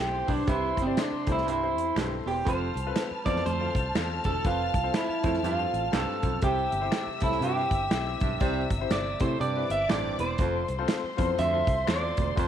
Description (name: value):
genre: uptempo 1960s-style soul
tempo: 121 BPM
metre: 4/4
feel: swing 60% on 8ths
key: C major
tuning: A4 = 440 Hz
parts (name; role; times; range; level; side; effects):
- electric guitar through a small old amp; melody; 0.0-12.5 s; C4 to E5; -29 LUFS; right 2 dB; none
- warm studio string section; second line; 0.0-12.5 s; C5 to F6; -36 LUFS; left 4 dB; none
- warm upright piano; accompaniment; 0.0-12.5 s; C3 to D5; -34 LUFS; left 10 dB; none
- fingered electric bass; bass; 0.0-12.5 s; E1 to C3; -33 LUFS; equal; none
- breathy baritone saxophone; riff; 0.3-12.5 s; D2 to C3; -34 LUFS; right 8 dB; none
- natural country drum kit; drums; 0.3-12.5 s; hi-hat, kick drum, snare drum; -30 LUFS; right 1 dB; none
- finger snaps; percussion; 1.0-12.0 s; none; -41 LUFS; left 11 dB; none
room: light reverb, small room ambience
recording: 1960s-style stereo with parts hard left and right, vinyl crackle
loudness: -25 LUFS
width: side -9 dB against mid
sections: 0.0-12.5 A section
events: clean electric guitar solo 0.0-12.5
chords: 0.0 C; 2.5 F; 6.4 C; 10.4 F